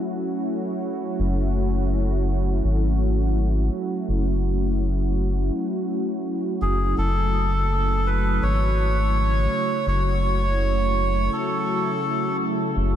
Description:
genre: ambient dub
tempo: 83 BPM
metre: 4/4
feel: swing 55% on 16ths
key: F# minor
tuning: A4 = 441 Hz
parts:
  - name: warm analog pad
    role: sustained chords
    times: 0.0-13.0 s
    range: C#3 to F#4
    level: -26 LUFS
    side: equal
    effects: chorus
  - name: round analog bass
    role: bass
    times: 1.2-13.0 s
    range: F#1 to G#1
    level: -22 LUFS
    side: equal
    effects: none
  - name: melodica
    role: melody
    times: 6.6-12.4 s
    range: G#4 to C#5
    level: -24 LUFS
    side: right 1 dB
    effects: dub echo
room: moderate huge ambient reverb, RT60 4.0 s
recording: dreamy mix soaked in reverb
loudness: -20 LUFS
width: side -10 dB against mid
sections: 0.0-7.0 A section; 7.0-13.0 B section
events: none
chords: 0.0 F#m7

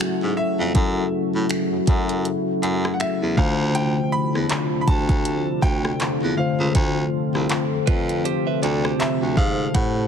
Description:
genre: contemporary R&B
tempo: 80 BPM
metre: 4/4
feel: swing 58% on 16ths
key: unclear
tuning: A4 = 440 Hz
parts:
  - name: bright grand piano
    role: melody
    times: 0.0-10.1 s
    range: E5 to B5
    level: -28 LUFS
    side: equal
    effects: ping-pong delay
  - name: mellow tine electric piano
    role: accompaniment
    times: 0.0-10.1 s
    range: A2 to C5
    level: -25 LUFS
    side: left 4 dB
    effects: medium stereo tremolo
  - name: deep dark ambient pad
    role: sustained chords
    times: 0.0-10.1 s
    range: C3 to A4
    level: -25 LUFS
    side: equal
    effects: chorus, built-in reverb
  - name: bright baritone saxophone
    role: bass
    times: 0.0-10.0 s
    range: C2 to A2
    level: -25 LUFS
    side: right 1 dB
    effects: none
  - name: smooth R&B drum kit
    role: drums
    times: 0.0-10.0 s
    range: finger snaps, handclaps, hi-hat, kick drum, rim click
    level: -22 LUFS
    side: right 1 dB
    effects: vintage 12-bit sampler grit
  - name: direct-recorded clean electric guitar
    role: arpeggios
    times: 7.9-9.7 s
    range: F4 to E5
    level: -28 LUFS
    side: right 10 dB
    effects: ping-pong delay
room: light reverb, digital ambience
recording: heavily compressed radio sound, multiband compression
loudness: -19 LUFS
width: side -7 dB against mid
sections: 0.0-10.1 A section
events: none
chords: 0.0 F#m7; 3.4 Dm7

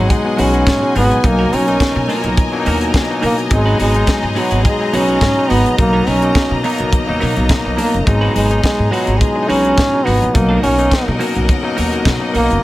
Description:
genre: disco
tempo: 105 BPM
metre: 4/4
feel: straight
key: unclear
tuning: A4 = 440 Hz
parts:
  - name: clear trombone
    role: melody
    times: 0.0-12.6 s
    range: F#3 to C#4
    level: -16 LUFS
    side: equal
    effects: none
  - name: barky tine electric piano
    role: accompaniment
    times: 0.0-12.6 s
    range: B2 to E#4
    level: -20 LUFS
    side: left 3 dB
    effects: overdrive
  - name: clean electric guitar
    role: accompaniment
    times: 0.0-12.5 s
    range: F#3 to B4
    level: -24 LUFS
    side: right 3 dB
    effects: none
  - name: clear studio string section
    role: sustained chords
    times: 0.0-12.6 s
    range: A#3 to A#5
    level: -23 LUFS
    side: left 1 dB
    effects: none
  - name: upright bass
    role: bass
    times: 0.0-12.6 s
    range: F#1 to B2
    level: -18 LUFS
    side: equal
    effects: none
  - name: tight funk drum kit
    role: drums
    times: 0.1-12.6 s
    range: hi-hat, kick drum, snare drum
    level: -18 LUFS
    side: equal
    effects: none
room: small room ambience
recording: none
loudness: -12 LUFS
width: side -16 dB against mid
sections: 0.0-12.6 A section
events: none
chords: 0.0 G#m7; 1.2 Bmaj7; 3.5 G#m7; 5.8 Bmaj7; 8.1 G#m7; 10.3 Bmaj7

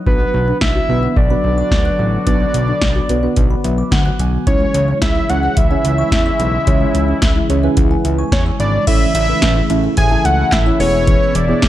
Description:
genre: synth-pop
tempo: 109 BPM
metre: 4/4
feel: straight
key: unclear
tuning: A4 = 440 Hz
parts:
  - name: fat analog lead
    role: melody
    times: 0.1-11.7 s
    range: B4 to G#5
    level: -19 LUFS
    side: equal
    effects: chorus, digital delay
  - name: muted felt-like synth keys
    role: accompaniment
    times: 0.1-11.7 s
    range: B3 to B5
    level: -21 LUFS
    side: right 4 dB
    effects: chorus
  - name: sweeping resonant pad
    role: sustained chords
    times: 0.1-11.7 s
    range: B2 to F#4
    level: -24 LUFS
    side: left 1 dB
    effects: lush chorus
  - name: kalimba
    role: arpeggios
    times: 0.1-11.7 s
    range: E3 to F#6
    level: -24 LUFS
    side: left 4 dB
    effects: digital delay
  - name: fat analog bass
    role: bass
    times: 0.1-11.7 s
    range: E1 to E2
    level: -18 LUFS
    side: equal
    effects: none
  - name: electro analog drum machine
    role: drums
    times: 0.1-11.7 s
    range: crash cymbal, handclaps, hi-hat, kick drum, snare drum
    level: -17 LUFS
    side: equal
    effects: none
room: light reverb, digital ambience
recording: dark, warm production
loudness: -12 LUFS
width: side -13 dB against mid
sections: 0.1-8.9 A section; 8.9-11.7 B section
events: synth keys fill 3.4-4.5, 7.2-8.9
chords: 0.1 Bm; 4.5 C#m; 8.9 A; 10.8 E

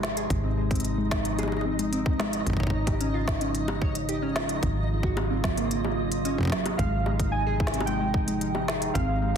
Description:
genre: IDM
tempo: 111 BPM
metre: 4/4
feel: straight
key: Ab major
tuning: A4 = 440 Hz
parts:
  - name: warbly tape-like pad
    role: sustained chords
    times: 0.0-9.4 s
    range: C3 to F4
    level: -32 LUFS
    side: left 1 dB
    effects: chorus, built-in reverb, vintage 12-bit sampler grit
  - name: deep acid bass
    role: bass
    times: 0.0-9.4 s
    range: Ab1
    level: -30 LUFS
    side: equal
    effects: tube saturation
  - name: organic electronic drum kit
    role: drums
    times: 0.0-9.1 s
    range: bongos, hi-hat, snare drum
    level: -32 LUFS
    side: left 1 dB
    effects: overdrive
  - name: flickering grainy texture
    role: texture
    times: 0.0-9.4 s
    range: Eb4 to Eb5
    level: -38 LUFS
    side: equal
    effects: built-in reverb
  - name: harp-like synth pluck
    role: arpeggios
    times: 0.2-9.3 s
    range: Gb3 to Db5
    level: -32 LUFS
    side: equal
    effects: chorus, digital delay
  - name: electronic kick drum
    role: drums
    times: 0.3-9.1 s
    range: none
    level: -28 LUFS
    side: equal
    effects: overdrive
  - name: warbly lo-fi synth keys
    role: melody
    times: 6.8-9.4 s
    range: F5 to Ab5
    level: -31 LUFS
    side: right 4 dB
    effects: chorus, vintage 12-bit sampler grit, ping-pong delay
room: light reverb, digital ambience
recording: dense, heavily limited modern master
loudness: -24 LUFS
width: side -8 dB against mid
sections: 0.0-9.4 A section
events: none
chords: 0.0 Ab6; 2.5 Dbadd9/Ab; 4.6 Gbmaj7/Ab; 6.8 Ab6

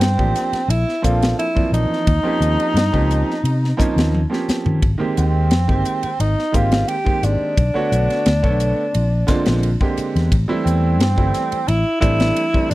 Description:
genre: electric jazz fusion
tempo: 87 BPM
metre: 4/4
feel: straight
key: unclear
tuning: A4 = 439 Hz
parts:
  - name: warm tenor saxophone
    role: melody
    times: 0.0-12.7 s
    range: C4 to G4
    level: -21 LUFS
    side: equal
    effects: none
  - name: fingered electric bass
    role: bass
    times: 0.0-12.7 s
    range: G1 to Eb3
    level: -18 LUFS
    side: equal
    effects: none
  - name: crisp fusion drum kit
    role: drums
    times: 0.0-12.7 s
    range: hi-hat, kick drum, ride cymbal, snare drum, toms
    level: -20 LUFS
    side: left 1 dB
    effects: none
  - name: bright baby grand piano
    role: accompaniment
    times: 0.2-12.7 s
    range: D3 to D5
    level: -23 LUFS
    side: right 3 dB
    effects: none
room: little or no reverb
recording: dry, close 1970s-style studio recording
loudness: -15 LUFS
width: side -17 dB against mid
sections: 0.0-12.7 A section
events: drum fill 4.1-4.8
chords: 0.0 Bbmaj9; 2.1 Eb13; 4.8 Abmaj9; 7.6 Bm9; 8.9 Bb9; 10.3 Am7

